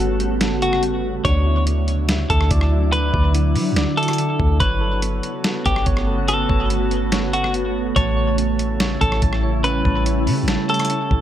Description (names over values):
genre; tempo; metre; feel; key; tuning
hip hop, atmospheric cloud-rap; 143 BPM; 4/4; half-time; G lydian; A4 = 441 Hz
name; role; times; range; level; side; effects
glassy FM pad; sustained chords; 0.0-11.2 s; C#3 to F#4; -23 LUFS; right 1 dB; ensemble chorus, built-in reverb, sidechain pumping
soft electric-piano-like synth keys; arpeggios; 0.0-11.2 s; D3 to A5; -28 LUFS; right 3 dB; chorus, low-pass filter, tape echo
soft 808-style bass; bass; 0.0-11.2 s; G1 to F#3; -20 LUFS; equal; none
lo-fi sampler-style drum kit; drums; 0.2-11.2 s; hi-hat, kick drum, rim click, snare drum; -22 LUFS; equal; overdrive
clean electric guitar; melody; 0.6-11.2 s; F#4 to C#5; -24 LUFS; equal; wide subtle chorus, low-pass filter, tape echo
room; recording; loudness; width
light reverb, digital ambience; none; -17 LUFS; side -11 dB against mid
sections
0.0-11.2 A section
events
none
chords
0.0 Gmaj9#11; 1.2 Dadd9; 4.6 Gmaj9#11; 8.0 A7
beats
0.41 0.83 | 1.25 1.67 2.09 2.51 | 2.93 3.35 3.77 4.19 | 4.61 5.03 5.45 5.87 | 6.28 6.70 7.12 7.54 | 7.96 8.38 8.80 9.22 | 9.64 10.06 10.48 10.90